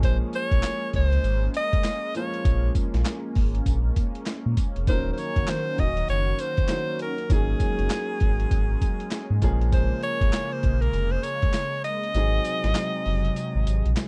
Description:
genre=R&B, new jack swing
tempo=99 BPM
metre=4/4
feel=swing 62% on 16ths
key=unclear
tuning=A4 = 440 Hz
part: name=clear alto saxophone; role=melody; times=0.0-13.9 s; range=Ab4 to Eb5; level=-31 LUFS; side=equal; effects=slapback echo
part: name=warm concert grand piano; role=accompaniment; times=0.0-14.1 s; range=F3 to Bb4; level=-36 LUFS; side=equal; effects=none
part: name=phased analog pad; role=sustained chords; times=0.0-14.1 s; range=C3 to Gb4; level=-37 LUFS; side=equal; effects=phaser, chorus
part: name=sub bass with octave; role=bass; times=0.0-13.9 s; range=Eb1 to Bb2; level=-26 LUFS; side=equal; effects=none
part: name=boom bap sampler-style drum kit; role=drums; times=0.0-14.1 s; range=handclaps, hi-hat, kick drum, snare drum, tambourine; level=-27 LUFS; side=equal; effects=vintage 12-bit sampler grit
room=little or no reverb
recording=dry, close 1970s-style studio recording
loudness=-25 LUFS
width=mono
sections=0.0-14.1 A section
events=kick muted 12.1-14.1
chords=0.0 Bbm7; 4.9 Ebm7; 7.3 Ab9sus4; 9.4 Bbm7; 12.1 Ab7

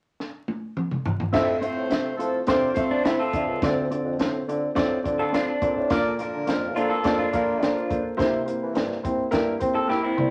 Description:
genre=uptempo 1960s-style soul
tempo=105 BPM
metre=4/4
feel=straight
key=F major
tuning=A4 = 438 Hz
part: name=compact cocktail drum kit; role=drums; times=0.2-10.3 s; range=crash cymbal, hi-hat, kick drum, snare drum, toms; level=-30 LUFS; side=equal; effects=none
part: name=mellow horn section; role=second line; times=1.3-7.9 s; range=F3 to E5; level=-32 LUFS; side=equal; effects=none
part: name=dark baby grand piano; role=accompaniment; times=1.3-10.3 s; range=Bb2 to E5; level=-28 LUFS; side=equal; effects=none
part: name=mellow bassoon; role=bass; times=1.3-10.3 s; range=Db2 to C4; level=-31 LUFS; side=equal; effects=none
part: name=electric guitar through a small old amp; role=riff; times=2.9-10.3 s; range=C4 to A4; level=-28 LUFS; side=equal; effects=none
room=moderate studio reverb, RT60 0.6 s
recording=vinyl crackle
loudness=-24 LUFS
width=mono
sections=0.0-1.3 A section; 1.3-10.3 B section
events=drum fill 0.2-1.3, 9.9-10.3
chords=0.0 N.C.; 1.3 Fmaj7; 3.6 Dm7; 5.9 Bbmaj7; 8.2 C7

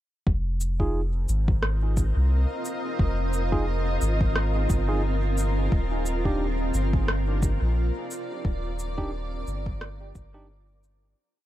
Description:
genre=ambient dub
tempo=88 BPM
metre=4/4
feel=swing 56% on 16ths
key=F dorian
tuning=A4 = 440 Hz
part: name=granular cloud pad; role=sustained chords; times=1.4-11.2 s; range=C4 to Eb5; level=-31 LUFS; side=equal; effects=built-in reverb
part: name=soft dub sub bass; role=bass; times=0.3-11.1 s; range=Eb1 to C2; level=-25 LUFS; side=equal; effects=none
part: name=electronic kick drum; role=drums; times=0.3-10.3 s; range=none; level=-26 LUFS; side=equal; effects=none
part: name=electronic cabasa and rim click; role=drums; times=0.6-11.0 s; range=none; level=-32 LUFS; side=equal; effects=dub echo
part: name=tine electric piano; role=stabs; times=0.8-10.5 s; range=D4 to Ab4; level=-35 LUFS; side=right 2 dB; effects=dub echo
room=little or no reverb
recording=none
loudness=-23 LUFS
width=side -14 dB against mid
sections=0.3-11.2 groove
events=fade-out 7.5-11.2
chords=0.3 Fm7; 5.7 Ebmaj7

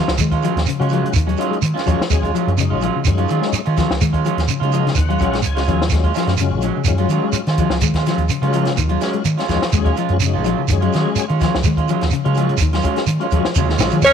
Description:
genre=afrobeat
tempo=126 BPM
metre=4/4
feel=straight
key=Eb minor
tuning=A4 = 440 Hz
part: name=clean electric guitar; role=arpeggios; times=0.0-14.1 s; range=Db3 to Ab3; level=-23 LUFS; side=left 10 dB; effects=none
part: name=electric guitar through a small old amp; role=stabs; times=0.0-14.0 s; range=Gb3 to F4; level=-23 LUFS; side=right 12 dB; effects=none
part: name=hollow-body short-scale fingered electric bass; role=bass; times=0.1-14.1 s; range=Bb1 to Eb3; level=-19 LUFS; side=equal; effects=none
part: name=compact cocktail drum kit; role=drums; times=0.1-14.1 s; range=hi-hat, kick drum, snare drum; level=-22 LUFS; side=left 2 dB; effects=none
part: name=shekere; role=percussion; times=0.2-14.1 s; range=none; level=-23 LUFS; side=right 7 dB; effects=none
part: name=tonewheel organ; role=accompaniment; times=0.8-14.1 s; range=Gb3 to Ab5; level=-24 LUFS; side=left 10 dB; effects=slow rotary speaker, overdrive, chorus vibrato
part: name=breathy alto saxophone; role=melody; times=14.0-14.1 s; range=Db5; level=-10 LUFS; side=left 2 dB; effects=none
part: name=raspy tenor saxophone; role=second line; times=14.1 s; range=Db4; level=-11 LUFS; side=right 14 dB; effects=none
room=light reverb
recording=1960s-style stereo with parts hard left and right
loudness=-15 LUFS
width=side -8 dB against mid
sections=0.0-13.6 A section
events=tonewheel organ fill 4.5-5.9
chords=0.0 Ebm11

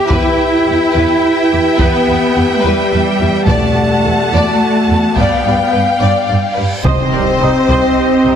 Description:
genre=cinematic, epic orchestral film score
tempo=71 BPM (dotted quarters)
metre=12/8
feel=straight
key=E minor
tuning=A4 = 440 Hz
part: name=rich symphonic violin section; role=melody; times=0.0-8.4 s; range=C5 to A5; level=-20 LUFS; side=left 2 dB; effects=none
part: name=warm symphonic violin section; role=second line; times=0.0-8.4 s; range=G4 to F#5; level=-20 LUFS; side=left 1 dB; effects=none
part: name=rich studio viola section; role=accompaniment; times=0.0-8.3 s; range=G3 to Eb5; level=-19 LUFS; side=equal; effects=none
part: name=rich symphonic cello section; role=bass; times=0.0-8.3 s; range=C2 to E4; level=-18 LUFS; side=right 2 dB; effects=none
part: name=mellow French horn section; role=sustained chords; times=0.1-8.4 s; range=C4 to F5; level=-17 LUFS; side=left 2 dB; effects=none
part: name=rich symphonic double bass section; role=bass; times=0.1-8.3 s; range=C2 to G2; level=-19 LUFS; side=right 2 dB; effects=none
part: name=taiko ensemble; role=drums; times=0.1-8.2 s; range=none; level=-19 LUFS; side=equal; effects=none
part: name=timpani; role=percussion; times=3.5-7.7 s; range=E2 to C3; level=-20 LUFS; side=left 1 dB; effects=none
part: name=reverse cymbal and impact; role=sound effects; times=6.4-8.4 s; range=none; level=-26 LUFS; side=equal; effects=none
part: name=rich symphonic string section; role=sustained chords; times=6.9-8.4 s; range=Eb4 to Eb5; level=-20 LUFS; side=equal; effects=none
part: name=dark trumpet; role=stabs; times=6.9-8.4 s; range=C4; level=-21 LUFS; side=right 1 dB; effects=none
part: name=clear trombone section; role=sustained chords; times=7.4-8.4 s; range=G3 to Eb4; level=-24 LUFS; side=right 3 dB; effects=none
room=wet scoring stage reverb, RT60 1.9 s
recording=heavily compressed radio sound, multiband compression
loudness=-10 LUFS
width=side -8 dB against mid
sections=0.0-6.9 A section; 6.9-8.4 B section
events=reverse cymbal 6.4-6.9; impact 6.9-8.4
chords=0.1 Em; 3.5 D/E; 5.2 G7; 6.9 Cm

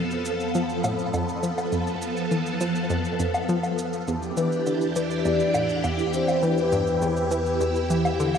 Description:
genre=ambient, sequencer-driven space music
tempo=102 BPM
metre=4/4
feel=straight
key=E phrygian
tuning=A4 = 440 Hz
part: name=phased string machine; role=sustained chords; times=0.0-8.4 s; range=E3 to A4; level=-26 LUFS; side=equal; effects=ensemble chorus, phaser
part: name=analog pluck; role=riff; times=0.0-8.4 s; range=E2 to F3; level=-28 LUFS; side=left 1 dB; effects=chorus, tape echo
part: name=analog drone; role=bass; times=0.0-8.4 s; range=E2 to F2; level=-35 LUFS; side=equal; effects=chorus
part: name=cabasa and woodblock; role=percussion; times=0.1-8.4 s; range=none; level=-32 LUFS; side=equal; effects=tape echo
part: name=soft octave-layered synth lead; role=melody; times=4.4-8.4 s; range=B4 to D5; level=-26 LUFS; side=left 2 dB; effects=chorus, phaser, tape echo
room=wet plate reverb, RT60 2.5 s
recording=dreamy mix soaked in reverb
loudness=-22 LUFS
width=side -7 dB against mid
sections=0.0-8.4 A section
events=fade-in on synth drone 0.0-8.4; filter sweep on synth arpeggio sound 0.0-8.4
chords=0.0 F; 4.1 Em7

